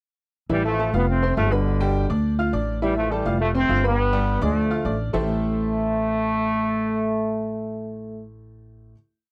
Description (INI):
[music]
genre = latin, salsa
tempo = 207 BPM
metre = 4/4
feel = straight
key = A minor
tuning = A4 = 439 Hz
[part]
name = clear trombone section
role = melody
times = 0.5-8.2 s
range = B2 to C4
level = -26 LUFS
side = equal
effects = none
[part]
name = bright upright piano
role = accompaniment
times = 0.5-8.9 s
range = E3 to F6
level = -30 LUFS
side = equal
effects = none
[part]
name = upright bass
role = bass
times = 0.5-8.9 s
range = F1 to D2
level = -27 LUFS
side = equal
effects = none
[sound]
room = little or no reverb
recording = dry, close 1970s-style studio recording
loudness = -23 LUFS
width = mono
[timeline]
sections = 0.5-5.1 montuno (vamp); 5.1-7.5 final chord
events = none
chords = 0.5 A5; 1.1 F; 1.7 G; 2.2 Dm; 2.8 A5; 3.4 F; 4.0 G; 4.6 Dm; 5.1 Am7